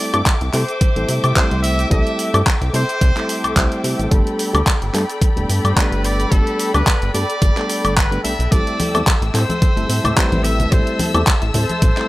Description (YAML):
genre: nu-disco, nu disco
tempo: 109 BPM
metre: 4/4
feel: swing 55% on 16ths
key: unclear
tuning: A4 = 436 Hz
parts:
  - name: clear trumpet section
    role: melody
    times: 0.0-12.1 s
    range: A4 to E5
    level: -25 LUFS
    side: equal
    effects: tape echo
  - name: bright reed electric piano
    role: accompaniment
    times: 0.0-12.1 s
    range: G3 to C5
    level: -23 LUFS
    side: equal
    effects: sidechain pumping
  - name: dark studio string section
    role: sustained chords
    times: 0.0-12.1 s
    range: A4 to E6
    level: -26 LUFS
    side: left 2 dB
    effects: sidechain pumping
  - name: chorused synth bass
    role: bass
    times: 0.1-11.9 s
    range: D1 to C3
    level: -20 LUFS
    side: equal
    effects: tube saturation
  - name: pop drum kit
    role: drums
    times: 0.1-12.1 s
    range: handclaps, hi-hat, shaker, woodblock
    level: -21 LUFS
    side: equal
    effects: overdrive
  - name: electronic kick drum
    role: drums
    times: 0.3-11.9 s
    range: none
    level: -16 LUFS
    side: equal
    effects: overdrive
  - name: analog pluck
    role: arpeggios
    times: 8.5-12.1 s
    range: G3 to G4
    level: -30 LUFS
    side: left 2 dB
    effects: none
  - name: congas and bongos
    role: percussion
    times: 8.8-11.8 s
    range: none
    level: -25 LUFS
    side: left 1 dB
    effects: none
room: digital ambience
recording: dry, gritty hardware recording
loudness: -14 LUFS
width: side -18 dB against mid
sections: 0.0-12.1 A section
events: none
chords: 0.0 C6; 4.1 Gadd9; 8.5 Am7